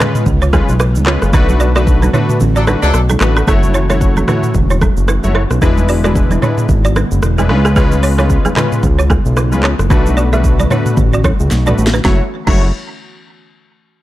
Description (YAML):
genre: afrobeats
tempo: 112 BPM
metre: 4/4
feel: swing 58% on 16ths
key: F# minor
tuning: A4 = 440 Hz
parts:
  - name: warm analog keys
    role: accompaniment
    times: 0.0-12.7 s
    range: G#3 to C#5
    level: -18 LUFS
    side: left 2 dB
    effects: chorus
  - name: airy breathy pad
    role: sustained chords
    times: 0.0-12.3 s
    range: C#3 to F#4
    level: -23 LUFS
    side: equal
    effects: chorus
  - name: balafon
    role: riff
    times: 0.0-12.6 s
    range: B3 to E5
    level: -20 LUFS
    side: right 3 dB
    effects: digital delay
  - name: afro-pop drum kit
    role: drums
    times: 0.0-12.6 s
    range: crash cymbal, handclaps, hi-hat, kick drum, rim click, shaker, snare drum, toms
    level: -15 LUFS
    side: equal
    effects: none
  - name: congas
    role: percussion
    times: 0.0-12.7 s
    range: none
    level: -22 LUFS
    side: right 2 dB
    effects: none
  - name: fat analog bass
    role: bass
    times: 0.3-12.7 s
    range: E1 to C#2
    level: -13 LUFS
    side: equal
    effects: none
  - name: clear horn section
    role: second line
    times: 2.6-3.0 s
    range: F#3 to A4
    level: -18 LUFS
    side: left 2 dB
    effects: none
room: little or no reverb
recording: dark, warm production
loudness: -10 LUFS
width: side -15 dB against mid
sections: 0.0-3.5 A section; 3.5-12.0 B section; 12.0-14.0 C section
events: band accent 1.3-3.5; kick muted 2.4-3.5; drum fill 11.5-12.0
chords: 0.0 C#7; 1.3 Bm7; 3.5 F#m7; 5.6 E7; 7.5 C#7; 9.9 Bm7; 12.0 F#m7